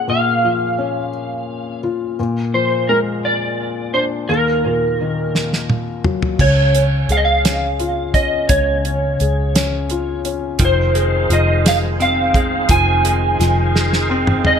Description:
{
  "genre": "six-eight pop ballad",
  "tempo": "57 BPM (dotted quarters)",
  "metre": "6/8",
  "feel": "straight",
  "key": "unclear",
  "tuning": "A4 = 440 Hz",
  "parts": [
    { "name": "electric slide guitar", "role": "melody", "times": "0.0-14.6 s", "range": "Bb4 to Ab5", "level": "-18 LUFS", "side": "right 1 dB", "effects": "ensemble chorus, digital delay" },
    { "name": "felt-muted upright piano", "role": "accompaniment", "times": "0.0-14.6 s", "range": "Eb2 to Ab4", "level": "-21 LUFS", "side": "left 4 dB", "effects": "none" },
    { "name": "damped 70s drum kit", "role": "drums", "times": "5.4-14.6 s", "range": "crash cymbal, hi-hat, kick drum, snare drum, toms", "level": "-18 LUFS", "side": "right 1 dB", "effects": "gated reverb" },
    { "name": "vintage muted fingered electric bass", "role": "bass", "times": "6.4-14.6 s", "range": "F1 to Db2", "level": "-19 LUFS", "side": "equal", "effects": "none" },
    { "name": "bright tonewheel organ", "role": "sustained chords", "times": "10.6-14.6 s", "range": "Eb4 to F5", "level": "-24 LUFS", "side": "equal", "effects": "chorus vibrato, slow rotary speaker" },
    { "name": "direct-recorded clean electric guitar", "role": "arpeggios", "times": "10.6-14.6 s", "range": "Eb3 to C4", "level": "-27 LUFS", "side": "right 6 dB", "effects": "wide subtle chorus, digital delay" }
  ],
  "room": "light reverb, small room ambience",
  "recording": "bright 1980s-style digital production",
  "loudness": "-15 LUFS",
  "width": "side -7 dB against mid",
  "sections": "0.0-6.4 A section; 6.4-14.6 B section",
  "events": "drum fill 5.3-6.4, 13.7-14.6",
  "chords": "0.0 Bbm7; 2.2 Bb7; 4.3 Ebm; 6.4 Db; 10.6 Fm7",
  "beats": "| 0.08 1.13 | 2.18 3.23 | 4.29 5.34 | 6.39 7.44 | 8.49 9.54 | 10.59 11.64 | 12.69 13.74"
}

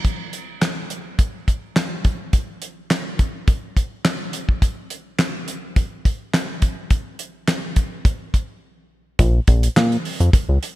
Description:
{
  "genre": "early-eighties boogie funk",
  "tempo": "105 BPM",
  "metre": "4/4",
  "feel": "straight",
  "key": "Bb minor",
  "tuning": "A4 = 441 Hz",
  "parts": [
    { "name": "damped 70s drum kit", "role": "drums", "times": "0.0-10.8 s", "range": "handclaps, hi-hat, kick drum, snare drum", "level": "-18 LUFS", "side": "equal", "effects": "none" },
    { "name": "chorused synth bass", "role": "bass", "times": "9.2-10.6 s", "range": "Bb1 to Bb2", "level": "-16 LUFS", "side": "equal", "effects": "none" }
  ],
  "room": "light reverb",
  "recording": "faint mains hum",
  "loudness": "-19 LUFS",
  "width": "side -17 dB against mid",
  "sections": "0.0-9.2 A section; 9.2-10.8 B section",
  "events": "break 8.6-9.2",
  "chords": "none",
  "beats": "| 0.05 0.62 1.19 1.76 | 2.33 2.90 3.48 4.05 | 4.62 5.19 5.76 6.33 | 6.90 7.47 8.05 8.62 | 9.19 9.76 10.33"
}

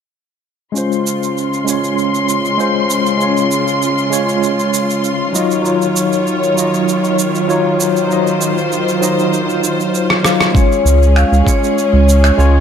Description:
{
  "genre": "sunset chillout",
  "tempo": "98 BPM",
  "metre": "4/4",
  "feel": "straight",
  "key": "unclear",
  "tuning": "A4 = 440 Hz",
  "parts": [
    { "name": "bright tine electric piano", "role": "accompaniment", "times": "0.7-12.6 s", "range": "Gb3 to F5", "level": "-16 LUFS", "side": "moving between left 5 dB and right 5 dB", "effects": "medium stereo tremolo, auto-pan, low-pass filter, digital delay" },
    { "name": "rich studio string section", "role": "sustained chords", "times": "0.7-12.6 s", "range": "Db3 to C6", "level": "-18 LUFS", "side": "left 1 dB", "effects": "low-pass filter" },
    { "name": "electronic shaker, rim click and finger snaps", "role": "drums", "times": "0.8-12.5 s", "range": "none", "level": "-20 LUFS", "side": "right 2 dB", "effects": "none" },
    { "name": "electronic kick drum", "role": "drums", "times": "10.5-11.6 s", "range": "none", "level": "-13 LUFS", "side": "right 1 dB", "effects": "none" },
    { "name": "vibraphone with hard mallets", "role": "melody", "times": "10.6-12.6 s", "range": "Db5 to F5", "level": "-16 LUFS", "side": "left 4 dB", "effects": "digital delay" },
    { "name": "round analog bass", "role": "bass", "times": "10.9-12.6 s", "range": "Db2", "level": "-10 LUFS", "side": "equal", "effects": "tube saturation" }
  ],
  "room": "moderate lush hall reverb, RT60 2.5 s",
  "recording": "none",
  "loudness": "-12 LUFS",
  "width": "side -8 dB against mid",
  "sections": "0.8-10.5 A section; 10.5-12.6 B section",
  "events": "filter sweep on tine electric piano 0.8-10.5; filter sweep on string section 0.8-10.5; drum fill 10.1-10.5",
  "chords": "0.8 Dbmaj7; 5.3 Ebm9; 10.5 Db",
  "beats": "| 0.75 1.36 1.98 2.59 | 3.20 3.81 4.42 5.04 | 5.65 6.26 6.87 7.49 | 8.10 8.71 9.32 9.93 | 10.55 11.16 11.77 12.38"
}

